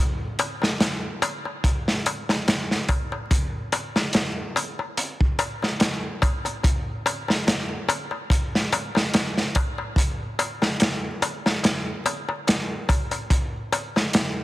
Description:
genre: trip hop.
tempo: 72 BPM.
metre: 4/4.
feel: swing 56% on 16ths.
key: none.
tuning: none.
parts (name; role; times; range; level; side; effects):
crunchy breakbeat drum kit; drums; 0.4-14.4 s; hi-hat, kick drum, snare drum; -22 LUFS; equal; none.
darbuka; percussion; 0.4-14.3 s; none; -29 LUFS; left 3 dB; none.
room: small room ambience.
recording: dense, heavily limited modern master, vinyl crackle.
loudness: -22 LUFS.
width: side -16 dB against mid.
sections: 0.0-14.4 A section.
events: none.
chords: none.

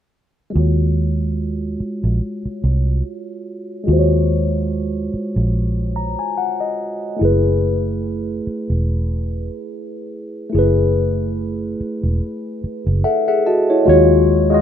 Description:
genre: R&B, neo-soul.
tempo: 72 BPM.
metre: 4/4.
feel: swing 56% on 16ths.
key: unclear.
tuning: A4 = 440 Hz.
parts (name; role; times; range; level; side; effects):
tine electric piano; accompaniment; 0.5-14.6 s; Ab3 to Bb5; -19 LUFS; left 1 dB; phaser, low-pass filter.
vintage muted fingered electric bass; bass; 0.6-14.6 s; Fb1 to Eb2; -18 LUFS; right 1 dB; none.
room: little or no reverb.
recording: rough home demo mix.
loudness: -16 LUFS.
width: side -9 dB against mid.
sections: 0.5-13.9 A section.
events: filter sweep on tine electric piano 0.5-13.9; tine electric piano fill 5.5-7.2, 12.6-13.9.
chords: 0.5 Ebm11; 7.2 Gbm11; 13.9 Ebm11.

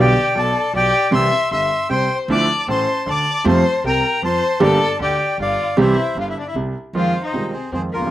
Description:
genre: tango.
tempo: 155 BPM.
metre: 3/4.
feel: rubato.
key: unclear.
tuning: A4 = 440 Hz.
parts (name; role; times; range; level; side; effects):
bandoneon; melody; 0.0-8.1 s; F4 to E6; -20 LUFS; equal; slapback echo.
warm violin; second line; 0.0-8.1 s; Bb3 to E5; -22 LUFS; left 4 dB; slapback echo.
clear concert grand piano; accompaniment; 0.0-8.1 s; G1 to G4; -20 LUFS; right 2 dB; none.
upright bass; bass; 0.0-8.1 s; G1 to F2; -23 LUFS; right 1 dB; none.
room: little or no reverb.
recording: recorded outdoors, with no room sound.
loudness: -16 LUFS.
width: side -13 dB against mid.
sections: 0.0-6.9 A section; 6.9-8.1 B section.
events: none.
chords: 0.0 G/B; 1.1 C; 2.3 Dmadd9; 3.5 Fadd9; 4.6 Gm; 5.8 C; 6.9 Fm7.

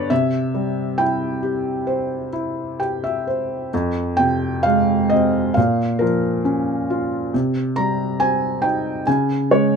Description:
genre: classical, lyrical solo piano.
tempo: 62-71 BPM.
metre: 4/4.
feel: rubato.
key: unclear.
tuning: A4 = 438 Hz.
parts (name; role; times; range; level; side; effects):
felt-muted upright piano; solo; 0.0-9.8 s; F2 to Bb5; -18 LUFS; equal; none.
room: light reverb.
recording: close, detailed microphones.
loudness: -18 LUFS.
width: side -6 dB against mid.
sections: 0.0-9.8 A section.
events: felt piano fill 2.3-3.7.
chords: 0.1 C; 3.7 Fm; 5.6 Bbm; 7.3 Cm7; 9.1 Db5.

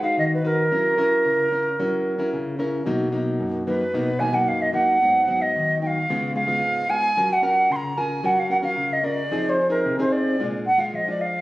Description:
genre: samba.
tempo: 112 BPM.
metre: 4/4.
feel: straight.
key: unclear.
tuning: A4 = 445 Hz.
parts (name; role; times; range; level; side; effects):
wooden flute; melody; 0.0-11.4 s; Bb4 to C6; -20 LUFS; right 1 dB; plate reverb.
nylon-string guitar; accompaniment; 0.0-11.4 s; F#2 to Cb5; -25 LUFS; left 1 dB; none.
room: moderate studio reverb, RT60 0.6 s.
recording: recorded on a phone in the room, club reverb.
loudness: -19 LUFS.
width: side -17 dB against mid.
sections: 0.0-11.4 A section.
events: none.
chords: 0.0 Abm7; 0.7 Gb7; 2.9 Bmaj7; 5.0 Abm7; 6.1 Db7; 7.2 Gbmaj7; 9.3 Fm7; 10.4 Bb7.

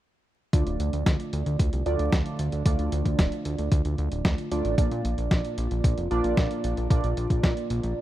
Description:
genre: italo disco.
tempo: 113 BPM.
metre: 4/4.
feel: straight.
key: D minor.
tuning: A4 = 441 Hz.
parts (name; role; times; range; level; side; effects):
chorused polysynth; stabs; 0.5-8.0 s; Bb2 to D5; -29 LUFS; right 2 dB; vintage 12-bit sampler grit, tape echo.
fat analog bass; bass; 0.5-7.9 s; D1 to Bb2; -28 LUFS; equal; tube saturation.
dusty soul sampler-style drum kit; drums; 0.5-7.9 s; hi-hat, snare drum; -30 LUFS; equal; none.
electronic kick drum; drums; 0.5-7.5 s; none; -24 LUFS; equal; overdrive.
room: little or no reverb.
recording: dry, close 1970s-style studio recording, vinyl crackle.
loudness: -23 LUFS.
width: side -14 dB against mid.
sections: 0.5-8.0 A section.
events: none.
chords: 0.5 Dm; 4.8 Bb.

